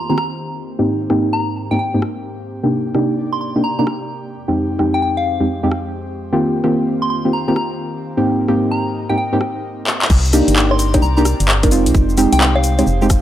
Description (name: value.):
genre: UK garage, two-step garage.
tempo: 130 BPM.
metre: 4/4.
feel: swing 65% on 16ths.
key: C minor.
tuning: A4 = 440 Hz.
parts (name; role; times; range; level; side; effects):
soft synth bell; melody; 0.0-13.0 s; F5 to C6; -23 LUFS; left 1 dB; chorus, phaser, analog delay.
airy breathy pad; sustained chords; 0.0-13.2 s; F2 to D5; -29 LUFS; equal; chorus, sidechain pumping.
deep mellow chord stab; stabs; 0.1-13.1 s; F2 to Bb4; -17 LUFS; equal; chorus.
garage drum kit; drums; 0.2-13.2 s; bongos, crash cymbal, handclaps, hi-hat, rim click, shaker; -19 LUFS; left 1 dB; none.
organ-like FM bass; bass; 10.1-13.2 s; F1 to C2; -16 LUFS; equal; none.
electronic kick drum; drums; 10.1-13.2 s; none; -14 LUFS; equal; none.
room: light reverb, digital ambience.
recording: dry, gritty hardware recording.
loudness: -14 LUFS.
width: side -12 dB against mid.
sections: 0.0-10.1 A section; 10.1-13.2 B section.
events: filter sweep on synth stab 0.0-10.1; filter sweep on analog synth pad 0.0-10.1; drum fill 9.9; drop 10.1-13.2.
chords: 0.0 Eb69; 0.9 Abmaj7; 2.7 Cm9; 4.3 Fm7; 6.4 Eb69; 8.3 Abmaj7; 10.1 Cm9; 11.7 Fm7.